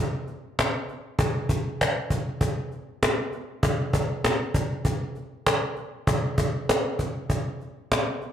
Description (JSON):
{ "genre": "blues", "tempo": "98 BPM", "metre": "4/4", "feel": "straight", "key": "none", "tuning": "none", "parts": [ { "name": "cajon", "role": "drums", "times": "0.3-8.3 s", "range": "none", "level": "-24 LUFS", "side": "equal", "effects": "none" } ], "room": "light reverb, studio ambience", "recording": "none", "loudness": "-24 LUFS", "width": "side -9 dB against mid", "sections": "0.0-8.3 A section", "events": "none", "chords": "none" }